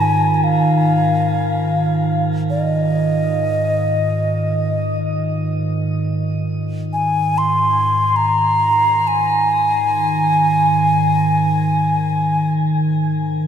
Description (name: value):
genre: world meditative, free-time meditation music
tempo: free time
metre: none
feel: none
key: Ab major pentatonic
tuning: A4 = 440 Hz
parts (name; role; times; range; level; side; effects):
- alto ocarina; melody; 0.0-12.5 s; Eb5 to C6; -17 LUFS; equal; shimmer reverb, ping-pong delay
- warbly tape-like pad; drone; 0.0-13.5 s; Ab2 to Eb3; -18 LUFS; right 1 dB; chorus, built-in reverb
room: wet cathedral reverb, RT60 6.5 s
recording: dark, warm production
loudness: -15 LUFS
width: side -8 dB against mid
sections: 0.0-13.5 A section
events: none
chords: none